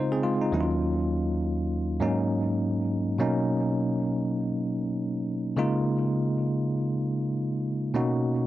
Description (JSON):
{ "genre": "R&B", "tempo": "101 BPM", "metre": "4/4", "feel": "swing 62% on 16ths", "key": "unclear", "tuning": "A4 = 440 Hz", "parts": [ { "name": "bell-like tine electric piano", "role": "solo", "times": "0.0-8.5 s", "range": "Eb2 to C5", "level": "-24 LUFS", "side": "equal", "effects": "medium stereo tremolo" } ], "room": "moderate booth ambience, RT60 0.2 s", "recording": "dry, close 1970s-style studio recording", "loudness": "-25 LUFS", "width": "side -14 dB against mid", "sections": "0.0-3.2 A section; 3.2-8.5 B section", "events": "none", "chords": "0.0 Dbmaj9; 0.5 Ebm9; 2.0 Ab7sus4; 3.2 Cbmaj9; 5.6 Db69; 8.0 Cbmaj9", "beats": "0.23 | 0.82 1.42 2.01 2.60 | 3.20 3.79 4.39 4.98 | 5.58 6.17 6.76 7.36 | 7.95" }